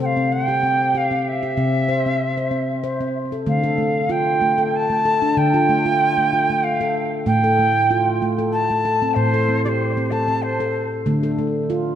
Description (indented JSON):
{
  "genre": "world meditative, meditative tuned percussion",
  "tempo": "95 BPM",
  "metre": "3/4",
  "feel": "straight",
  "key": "D minor",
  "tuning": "A4 = 441 Hz",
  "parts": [
    { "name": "Native American-style cedar flute", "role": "melody", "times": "0.0-10.9 s", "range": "C5 to A5", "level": "-20 LUFS", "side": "right 1 dB", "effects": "analog delay" },
    { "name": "handpan", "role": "arpeggios", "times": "0.0-12.0 s", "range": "A2 to C5", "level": "-20 LUFS", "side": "equal", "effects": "analog delay" }
  ],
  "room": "wet plate reverb, RT60 2.9 s",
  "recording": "dreamy mix soaked in reverb",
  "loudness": "-17 LUFS",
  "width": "side -10 dB against mid",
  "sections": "0.0-3.5 A section; 3.5-12.0 B section",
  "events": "none",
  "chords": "0.0 C; 3.5 Dm; 7.3 Am; 11.1 Dm"
}